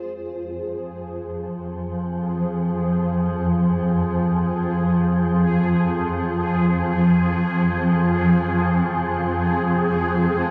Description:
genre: dark ambient drone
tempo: free time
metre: none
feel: none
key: F minor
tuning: A4 = 439 Hz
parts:
  - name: swarming drone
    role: drone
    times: 0.8-10.5 s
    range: F2 to F3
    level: -22 LUFS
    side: equal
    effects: built-in reverb
  - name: bubbling stepped-filter texture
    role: texture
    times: 0.3-10.5 s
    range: Ab4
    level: -31 LUFS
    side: equal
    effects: chorus, built-in reverb
  - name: granular cloud pad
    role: sustained chords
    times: 8.9-10.5 s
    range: C4 to Ab4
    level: -33 LUFS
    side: equal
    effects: built-in reverb
room: wet huge ambient reverb, RT60 8.8 s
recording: dark, warm production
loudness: -21 LUFS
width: mono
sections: 0.0-10.5 A section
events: fade-in on synth texture 0.0-10.5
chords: 0.0 Fm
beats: free time

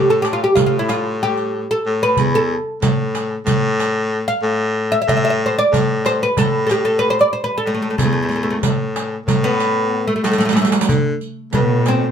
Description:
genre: Turkish makam ensemble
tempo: 186 BPM (eighths)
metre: 9/8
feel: straight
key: A makam nihavent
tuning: A4 = 441 Hz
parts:
  - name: oud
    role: melody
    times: 0.0-12.1 s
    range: A3 to F5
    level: -18 LUFS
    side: equal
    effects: none
  - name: clear baritone saxophone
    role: bass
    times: 0.0-12.1 s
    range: E2 to D3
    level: -20 LUFS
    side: left 2 dB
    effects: none
  - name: darbuka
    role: percussion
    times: 0.2-12.0 s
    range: none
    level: -21 LUFS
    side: right 1 dB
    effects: none
  - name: riq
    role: percussion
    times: 0.2-12.0 s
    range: none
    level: -23 LUFS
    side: right 5 dB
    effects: none
  - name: dark kamancheh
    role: second line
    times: 11.5-12.1 s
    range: B4-38c to C5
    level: -27 LUFS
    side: left 6 dB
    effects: none
  - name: warm chamber cello section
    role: second line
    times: 11.5-12.1 s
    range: B2-40c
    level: -18 LUFS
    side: right 2 dB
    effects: none
room: wet small room reverb, RT60 0.5 s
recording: band playing live in one room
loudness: -15 LUFS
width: side -8 dB against mid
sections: 0.0-10.9 A section; 10.9-12.1 B section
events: drum fill 10.2-10.9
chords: none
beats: 0.25 0.57 0.90 1.22 1.54 1.86 | 2.19 2.51 2.83 3.15 3.48 3.80 4.12 4.44 4.76 | 5.09 5.41 5.73 6.05 6.38 6.70 7.02 7.34 7.66 | 7.99 8.31 8.63 8.95 9.27 9.60 9.92 10.24 10.56 | 10.89 11.21 11.53 11.85

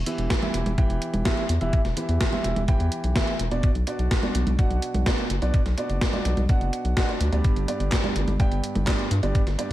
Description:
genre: italo disco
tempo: 126 BPM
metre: 4/4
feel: straight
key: E minor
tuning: A4 = 441 Hz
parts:
  - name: round analog bass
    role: bass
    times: 0.0-9.7 s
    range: E1 to G2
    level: -24 LUFS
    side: equal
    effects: none
  - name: clear concert grand piano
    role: stabs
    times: 0.1-9.7 s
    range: G2 to G5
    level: -28 LUFS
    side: right 1 dB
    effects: low-pass filter, tape echo
  - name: gated 80s digital drum machine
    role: drums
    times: 0.1-9.7 s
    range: congas, handclaps, hi-hat, snare drum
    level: -28 LUFS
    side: equal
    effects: gated reverb, gated reverb snare
  - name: electronic kick drum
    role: drums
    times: 0.3-9.4 s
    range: none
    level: -23 LUFS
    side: equal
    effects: none
room: little or no reverb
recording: none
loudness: -21 LUFS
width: side -15 dB against mid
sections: 0.0-9.7 A section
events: none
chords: 0.0 Em; 3.6 Bm; 7.4 G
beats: 0.30 0.78 1.25 | 1.73 2.21 2.68 3.16 | 3.64 4.11 4.59 5.07 | 5.54 6.02 6.49 6.97 | 7.45 7.92 8.40 8.87 | 9.35

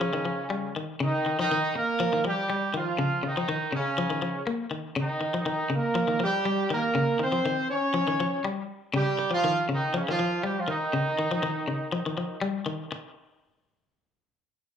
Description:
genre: afrobeat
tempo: 121 BPM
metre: 4/4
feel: straight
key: Eb mixolydian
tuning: A4 = 440 Hz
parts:
  - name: warm horn section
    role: melody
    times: 0.0-12.4 s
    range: Db3 to Db5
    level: -26 LUFS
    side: right 2 dB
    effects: slapback echo
  - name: clean electric guitar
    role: arpeggios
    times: 0.0-12.9 s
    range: Db3 to Bb3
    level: -29 LUFS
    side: left 4 dB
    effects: spring reverb, slapback echo
room: light reverb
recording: live gig heard through the venue's PA, club reverb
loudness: -25 LUFS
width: side -8 dB against mid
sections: 0.0-12.9 A section; 12.9-14.8 B section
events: none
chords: 0.0 Eb7; 12.9 N.C.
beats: 0.01 0.50 | 1.00 1.49 1.99 2.49 | 2.98 3.48 3.98 4.47 | 4.97 5.46 5.96 6.46 | 6.95 7.45 7.94 8.44 | 8.94 9.43 9.93 10.42 | 10.92 11.41 11.91 12.40 | 12.90

